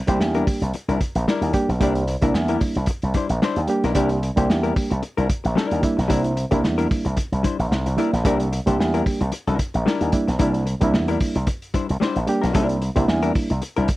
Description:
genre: funk.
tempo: 112 BPM.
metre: 4/4.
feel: swing 56% on 16ths.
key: C mixolydian.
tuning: A4 = 440 Hz.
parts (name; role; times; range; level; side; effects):
hollow-body jazz guitar; accompaniment; 0.1-13.9 s; G3 to C5; -25 LUFS; left 5 dB; none.
reed electric piano; stabs; 0.1-13.5 s; G3 to G4; -22 LUFS; right 2 dB; none.
slap bass with an envelope filter; bass; 0.1-13.9 s; Bb1 to E2; -22 LUFS; equal; none.
vintage drum kit; drums; 0.1-14.0 s; hi-hat, kick drum, snare drum; -24 LUFS; equal; none.
room: little or no reverb.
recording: dry, close 1970s-style studio recording.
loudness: -19 LUFS.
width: side -17 dB against mid.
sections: 0.0-14.0 A section.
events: none.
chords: 0.0 C9.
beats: 0.20 0.74 1.27 | 1.81 2.35 2.88 3.42 | 3.96 4.49 5.03 5.57 | 6.10 6.64 7.18 7.71 | 8.25 8.79 9.32 9.86 | 10.40 10.93 11.47 12.01 | 12.54 13.08 13.62.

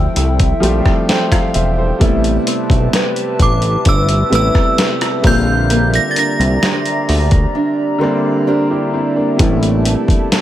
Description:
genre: contemporary R&B.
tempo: 65 BPM.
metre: 4/4.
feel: straight.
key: A phrygian.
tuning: A4 = 439 Hz.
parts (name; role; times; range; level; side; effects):
clear concert grand piano; accompaniment; 0.0-10.4 s; C3 to G5; -18 LUFS; equal; none.
hollow soft pad; sustained chords; 0.0-10.4 s; F3 to Bb5; -23 LUFS; right 1 dB; chorus, sidechain pumping.
fingerpicked old ladder-braced acoustic guitar; arpeggios; 0.0-10.4 s; A3 to C5; -21 LUFS; equal; none.
fat analog bass; bass; 0.0-10.2 s; E1 to E2; -15 LUFS; equal; none.
dusty soul sampler-style drum kit; drums; 0.2-10.4 s; hi-hat, kick drum, rim click, snare drum; -15 LUFS; equal; overdrive.
synth chime; melody; 3.4-7.1 s; D6 to Bb6; -19 LUFS; right 2 dB; ensemble chorus, tape echo.
room: light reverb, digital ambience.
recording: none.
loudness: -12 LUFS.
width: side -12 dB against mid.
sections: 0.0-9.4 A section; 9.4-10.4 B section.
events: grand piano fill 0.6-2.0.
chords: 0.0 Fmaj9; 2.0 Am9; 5.2 Bb69; 9.4 Am9.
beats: 0.16 1.09 | 2.01 2.93 3.86 4.78 | 5.70 6.63 7.55 8.47 | 9.39 10.32.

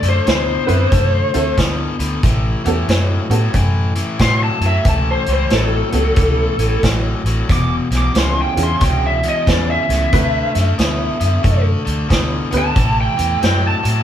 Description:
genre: electric blues shuffle.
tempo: 91 BPM.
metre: 4/4.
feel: swing 64% on 8ths.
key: A mixolydian.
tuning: A4 = 441 Hz.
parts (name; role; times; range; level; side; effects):
lead guitar through a small cranked amp; melody; 0.0-14.0 s; A4 to D6; -19 LUFS; left 1 dB; overdrive.
crunchy overdriven guitar; riff; 0.0-14.0 s; E2 to B3; -22 LUFS; left 3 dB; none.
vintage muted fingered electric bass; bass; 0.0-14.0 s; E1 to A2; -18 LUFS; equal; none.
vintage drum kit; drums; 0.0-14.0 s; hi-hat, kick drum, snare drum; -19 LUFS; equal; none.
honky-tonk upright piano; accompaniment; 0.7-12.7 s; B3 to B4; -23 LUFS; right 3 dB; none.
room: moderate stone room reverb, RT60 1.0 s.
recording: band playing live in one room.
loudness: -14 LUFS.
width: side -10 dB against mid.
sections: 0.0-14.0 A section.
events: lead electric guitar solo 0.0-14.0.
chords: 0.0 D13; 2.2 A13; 7.5 E13; 10.1 D13; 12.8 A7(no3).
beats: 0.26 0.91 1.57 | 2.23 2.89 3.54 4.20 | 4.86 5.52 6.18 6.83 | 7.49 8.15 8.81 9.47 | 10.13 10.79 11.45 12.11 | 12.77 13.43.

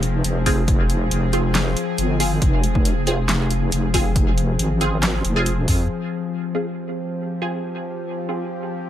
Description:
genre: deep dubstep.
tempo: 138 BPM.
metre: 4/4.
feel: swing 54% on 16ths, half-time.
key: F minor.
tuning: A4 = 440 Hz.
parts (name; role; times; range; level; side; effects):
bowed-like drone; sustained chords; 0.0-8.9 s; F3 to Ab4; -26 LUFS; left 2 dB; built-in reverb.
deep soft wobble bass; bass; 0.0-5.9 s; F1 to F2; -21 LUFS; equal; chorus.
deep house drum kit; drums; 0.0-5.8 s; handclaps, hi-hat, snare drum; -24 LUFS; equal; overdrive, low-pass filter on hats, small room ambience, low-pass filter on snare.
filtered dub chord stab; stabs; 0.5-8.5 s; C4 to Ab4; -27 LUFS; right 1 dB; phaser, ensemble chorus, dub echo.
electronic kick drum; drums; 0.5-5.8 s; none; -20 LUFS; equal; overdrive, small room ambience.
room: light reverb.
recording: none.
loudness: -18 LUFS.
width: side -11 dB against mid.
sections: 0.0-5.9 A section; 5.9-8.9 B section.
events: drop 0.0-5.9.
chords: 0.0 Fm.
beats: 0.24 | 0.68 1.11 1.55 1.98 | 2.42 2.85 3.29 3.72 | 4.16 4.59 5.03 5.46 | 5.90 6.33 6.77 7.20 | 7.64 8.07 8.51.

